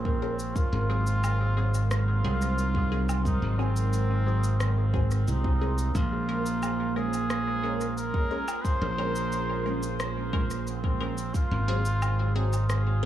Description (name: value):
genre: ambient dub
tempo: 89 BPM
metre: 4/4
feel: straight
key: unclear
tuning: A4 = 440 Hz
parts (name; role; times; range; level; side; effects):
- trombone with straight mute; melody; 0.0-13.1 s; C4 to C5; -33 LUFS; equal; vintage 12-bit sampler grit, dub echo
- warbly tape-like pad; sustained chords; 0.0-13.1 s; Gb3 to C5; -37 LUFS; right 1 dB; chorus, built-in reverb
- modern bright fingered electric bass; bass; 0.0-13.1 s; Ab1 to C2; -26 LUFS; right 1 dB; tube saturation
- electronic kick drum; drums; 0.1-11.5 s; none; -29 LUFS; equal; none
- filtered dub chord stab; stabs; 0.2-13.1 s; Gb3 to Bb4; -36 LUFS; left 2 dB; phaser, dub echo
- electronic cabasa, woodblock and rim click; drums; 0.4-12.8 s; none; -38 LUFS; left 1 dB; dub echo
room: digital ambience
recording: echo-heavy mix, small room ambience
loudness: -24 LUFS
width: side -12 dB against mid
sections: 0.0-13.1 A section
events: none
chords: 0.0 Bbm7; 0.6 Ab7; 6.0 Bbm7; 11.3 Ab7